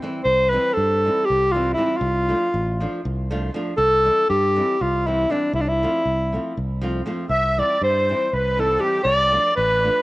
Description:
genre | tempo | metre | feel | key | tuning
balkan folk, Balkan wedding band | 238 BPM (eighths) | 7/8 | straight | C major | A4 = 440 Hz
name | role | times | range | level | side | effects
flamenco guitar | accompaniment | 0.0-10.0 s | E3 to F4 | -30 LUFS | right 1 dB | cassette tape
clear alto saxophone | melody | 0.2-10.0 s | D4 to E5 | -19 LUFS | equal | none
modern bright fingered electric bass | bass | 0.3-9.9 s | A1 to G2 | -25 LUFS | equal | none
musette accordion | second line | 7.3-10.0 s | G4 to E5 | -28 LUFS | equal | cassette tape
room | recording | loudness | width
light reverb | home recording on cassette | -18 LUFS | side -19 dB against mid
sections
0.2-10.0 A section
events
none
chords
0.2 C; 2.0 Dm; 3.8 C; 5.5 F/C; 7.3 C; 9.1 Dm

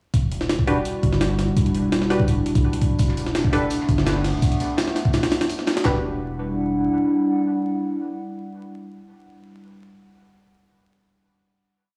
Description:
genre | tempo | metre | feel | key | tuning
drum and bass, jungle | 168 BPM | 4/4 | straight | E minor | A4 = 440 Hz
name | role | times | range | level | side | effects
warbly tape-like pad | sustained chords | 0.4-9.5 s | G3 to F#5 | -27 LUFS | equal | chorus, built-in reverb, vintage 12-bit sampler grit
soft dub sub bass | bass | 0.1-6.9 s | E1 to B1 | -28 LUFS | equal | none
jungle sampler-style drum kit | drums | 0.1-5.9 s | handclaps, hi-hat, kick drum, snare drum | -23 LUFS | equal | none
filtered dub chord stab | stabs | 0.7-3.6, 5.8-10.2 s | D4 to B4 | -30 LUFS | equal | chorus, dub echo
crunchy breakbeat drum kit | drums | 3.0-5.8 s | hi-hat, snare drum, tambourine | -39 LUFS | equal | high-pass filter on hats, high-pass filter on snare, high-pass filter on perc, high-pass filter on room
room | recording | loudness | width
moderate plate reverb, RT60 1.4 s, studio reverb | played on a big sound system in a bare room, large studio reverb, vinyl crackle, small room reverb | -22 LUFS | mono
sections
0.1-5.9 drop; 5.9-8.7 final chord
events
drop 0.1-5.9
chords
0.1 Em9; 3.0 Gadd9/E; 5.9 Em9

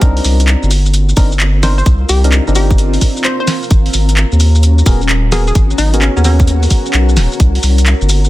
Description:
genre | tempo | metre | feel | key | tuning
UK garage, two-step garage | 130 BPM | 4/4 | swing 66% on 16ths | unclear | A4 = 440 Hz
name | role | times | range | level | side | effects
percussive organ stab | stabs | 0.0-7.4 s | Cb4 to Bb4 | -21 LUFS | left 1 dB | chorus, digital delay
saturated sub bass | bass | 0.0-8.3 s | Eb1 to Eb2 | -11 LUFS | equal | sidechain pumping
electronic kick drum | drums | 0.0-7.5 s | none | -10 LUFS | equal | none
punchy analog drum machine | drums | 0.0-8.3 s | handclaps, hi-hat, shaker, snare drum | -18 LUFS | equal | none
granular cloud pad | texture | 0.3-8.3 s | C4 to Bb4 | -21 LUFS | left 1 dB | built-in reverb, sidechain pumping
hollow square pluck | melody | 1.6-6.9 s | Db4 to C5 | -20 LUFS | left 1 dB | chorus, vintage 12-bit sampler grit, digital delay
room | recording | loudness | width
digital ambience | dense, heavily limited modern master | -9 LUFS | side -16 dB against mid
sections
0.0-8.3 A section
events
drop 0.0-8.3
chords
0.0 Cm9; 3.5 Abm9; 7.4 C7(no3)

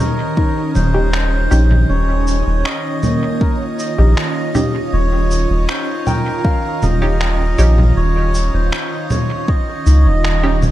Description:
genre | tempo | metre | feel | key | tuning
ambient dub | 79 BPM | 4/4 | straight | Eb mixolydian | A4 = 440 Hz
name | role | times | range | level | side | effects
melodica | melody | 0.0-10.6 s | Bb4 to Eb5 | -24 LUFS | right 1 dB | dub echo
soft additive organ-like pad | sustained chords | 0.0-10.7 s | Eb3 to Eb5 | -22 LUFS | right 1 dB | ensemble chorus, built-in reverb
handpan | arpeggios | 0.4-10.7 s | Bb3 to G5 | -27 LUFS | left 1 dB | tape echo
electronic kick drum | drums | 0.4-9.6 s | none | -16 LUFS | equal | overdrive
soft dub sub bass | bass | 0.8-10.7 s | Eb1 to Db2 | -14 LUFS | equal | none
electronic congas, shaker and finger snaps | drums | 0.8-10.7 s | none | -21 LUFS | equal | dub echo
filtered dub chord stab | stabs | 0.9-10.6 s | Db4 to G4 | -25 LUFS | equal | lush chorus, dub echo
room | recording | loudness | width
digital ambience | lossy compression artefacts | -13 LUFS | side -14 dB against mid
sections
0.0-10.7 A section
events
band accent 10.2-10.6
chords
0.0 Eb7

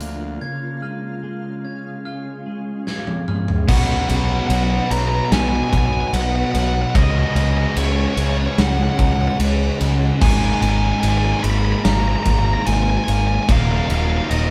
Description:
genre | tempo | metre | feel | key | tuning
post-rock | 73 BPM | 4/4 | straight | unclear | A4 = 439 Hz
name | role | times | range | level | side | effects
shimmering ambient pad | sustained chords | 0.0-14.5 s | Db3 to Ab5 | -35 LUFS | equal | none
glockenspiel with hard plastic mallets | arpeggios | 0.0-3.7 s | F6 to Ab6 | -39 LUFS | equal | none
twelve-string electric guitar | arpeggios | 0.0-14.5 s | Eb2 to Gb4 | -32 LUFS | equal | none
fuzz picked electric bass | bass | 0.0-14.5 s | Eb1 to D2 | -22 LUFS | equal | overdrive
big rock drum kit | drums | 0.0-14.5 s | crash cymbal, hi-hat, kick drum, ride cymbal, snare drum, toms | -24 LUFS | equal | none
bluesy overdriven lead guitar | melody | 3.7-14.5 s | Db5 to Cb6 | -26 LUFS | equal | distortion
crunchy overdriven guitar | riff | 3.7-14.5 s | Eb2 to Ab4 | -28 LUFS | equal | none
distorted electric guitar | riff | 3.7-14.5 s | Eb2 to Ab4 | -29 LUFS | equal | overdrive
room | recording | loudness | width
moderate studio reverb, RT60 0.7 s | band playing live in one room | -19 LUFS | mono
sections
0.0-3.7 A section; 3.7-14.5 B section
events
drum fill 2.9-3.7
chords
0.4 Db; 3.7 B; 7.0 Dbsus4; 10.2 Absus2; 13.5 Ebm

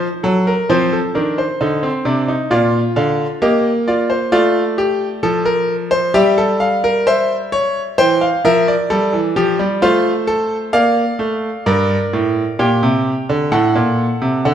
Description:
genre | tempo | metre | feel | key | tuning
classical, baroque-style 3-part fugue for grand piano | 66 BPM | 4/4 | straight | unclear | A4 = 441 Hz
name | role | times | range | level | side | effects
bright grand piano | solo | 0.0-14.5 s | G2 to G5 | -14 LUFS | equal | none
room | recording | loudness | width
moderate recital hall reverb, RT60 1.7 s | faint mains hum | -13 LUFS | side -9 dB against mid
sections
0.0-11.7 A section; 11.7-14.5 B section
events
none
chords
0.0 Adim7(no3); 0.7 F7(no3); 2.5 Bb; 4.3 F/A; 6.1 Em6/G; 8.0 C7/E; 9.8 F/A; 11.7 Gm; 13.5 F#dim/A

